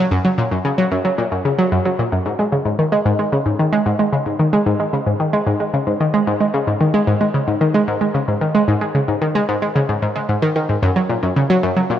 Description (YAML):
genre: ambient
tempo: 112 BPM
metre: 4/4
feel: straight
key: unclear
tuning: A4 = 440 Hz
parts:
  - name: analog pluck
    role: solo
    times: 0.0-11.9 s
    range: F#2 to G#3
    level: -15 LUFS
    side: equal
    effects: chorus, ping-pong delay
room: wet plate reverb, RT60 3.7 s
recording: worn, warbling old tape, cassette tape, warbly pitch drift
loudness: -15 LUFS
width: side -10 dB against mid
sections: 0.0-12.0 A section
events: none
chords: none